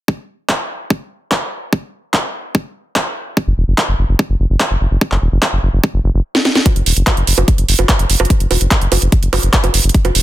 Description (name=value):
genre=psychedelic trance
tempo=146 BPM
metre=4/4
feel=straight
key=unclear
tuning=A4 = 439 Hz
part: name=electronic kick drum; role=drums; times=0.1-10.0 s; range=none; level=-13 LUFS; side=equal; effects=high-pass filter on kick, studio ambience
part: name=drum and bass drum kit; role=drums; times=0.5-10.2 s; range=bongos, handclaps, hi-hat, snare drum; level=-16 LUFS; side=right 2 dB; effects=overdrive, studio ambience
part: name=round analog bass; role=bass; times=3.5-10.2 s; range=E1 to F#1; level=-14 LUFS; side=equal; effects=none
room=little or no reverb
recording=dense, heavily limited modern master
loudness=-13 LUFS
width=side -14 dB against mid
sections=0.1-6.7 A section; 6.7-10.2 B section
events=drum fill 6.3-6.7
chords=none